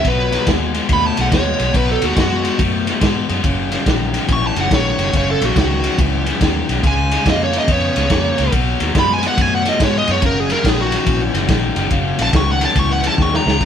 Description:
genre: electric blues shuffle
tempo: 142 BPM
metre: 4/4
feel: swing 65% on 8ths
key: F# mixolydian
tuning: A4 = 440 Hz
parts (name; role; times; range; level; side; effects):
- smooth overdriven lead guitar; melody; 0.0-13.6 s; F#4 to C#6; -19 LUFS; right 2 dB; none
- crunchy overdriven guitar; riff; 0.0-13.7 s; F#2 to B3; -20 LUFS; left 4 dB; none
- vintage muted fingered electric bass; bass; 0.0-13.7 s; F#1 to G#2; -21 LUFS; right 1 dB; none
- vintage drum kit; drums; 0.0-13.7 s; crash cymbal, kick drum, ride cymbal, snare drum; -18 LUFS; equal; none
room: moderate studio reverb, RT60 0.9 s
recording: band playing live in one room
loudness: -14 LUFS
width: side -8 dB against mid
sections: 0.0-13.6 A section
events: lead electric guitar solo 0.0-13.6; drum fill 13.2-13.6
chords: 0.0 B7; 3.4 F#7; 6.8 C#7; 8.5 B7(no3); 10.2 F#7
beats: | 0.05 0.47 0.90 1.32 | 1.75 2.17 2.59 3.02 | 3.44 3.87 4.29 4.71 | 5.14 5.56 5.99 6.41 | 6.84 7.26 7.68 8.11 | 8.53 8.96 9.38 9.80 | 10.23 10.65 11.07 11.49 | 11.92 12.34 12.76 13.19 | 13.61

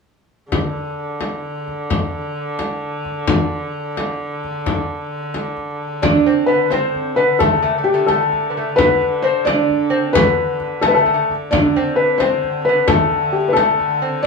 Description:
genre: medieval dance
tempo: 87 BPM (dotted quarters)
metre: 6/8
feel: straight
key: unclear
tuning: A4 = 440 Hz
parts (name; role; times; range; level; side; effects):
- rich hurdy-gurdy; drone; 0.5-14.3 s; D3; -25 LUFS; equal; none
- frame drum; percussion; 0.5-13.9 s; none; -20 LUFS; left 2 dB; none
- felt-muted upright piano; melody; 6.0-14.3 s; G4 to D5; -16 LUFS; left 4 dB; none
- lute; second line; 6.0-14.3 s; A3 to D4; -20 LUFS; right 5 dB; none
room: moderate studio reverb, RT60 0.5 s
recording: band playing live in one room, studio reverb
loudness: -15 LUFS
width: side -4 dB against mid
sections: 0.5-6.0 A section; 6.0-14.3 B section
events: none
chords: none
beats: | 0.53 1.22 | 1.91 2.59 | 3.28 3.97 | 4.66 5.35 | 6.04 6.72 | 7.41 8.10 | 8.78 9.47 | 10.15 10.84 | 11.52 12.21 | 12.89 13.57 | 14.25

